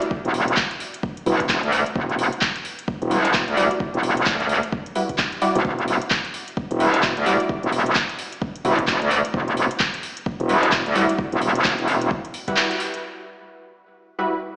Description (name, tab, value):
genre	bass house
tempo	130 BPM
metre	4/4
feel	swing 60% on 16ths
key	E minor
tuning	A4 = 438 Hz
part	orchestra-hit-like synth stab	stabs	0.0-14.3 s	G3 to D5	-25 LUFS	equal	built-in reverb, sidechain pumping, tape echo
part	house drum kit	drums	0.0-13.0 s	handclaps, hi-hat	-24 LUFS	equal	none
part	electronic kick drum	drums	0.1-12.6 s	none	-27 LUFS	equal	none
part	metallic wobble bass	bass	0.2-12.1 s	E1 to D2	-19 LUFS	equal	chorus, tube saturation, sidechain pumping
room	light reverb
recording	played on a big sound system in a bare room, stone room reverb, small speaker sound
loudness	-19 LUFS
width	side -29 dB against mid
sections	0.0-13.0 A section; 13.0-14.6 B section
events	filter sweep on synth stab 0.0-13.0; kick drops out 12.6-13.0; band accent 12.6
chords	0.0 Emadd9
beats	| 0.11 0.57 1.03 1.49 | 1.96 2.42 2.88 3.34 | 3.80 4.26 4.72 5.19 | 5.65 6.11 6.57 7.03 | 7.49 7.96 8.42 8.88 | 9.34 9.80 10.26 10.72 | 11.19 11.65 12.11 12.57 | 13.03 13.49 13.96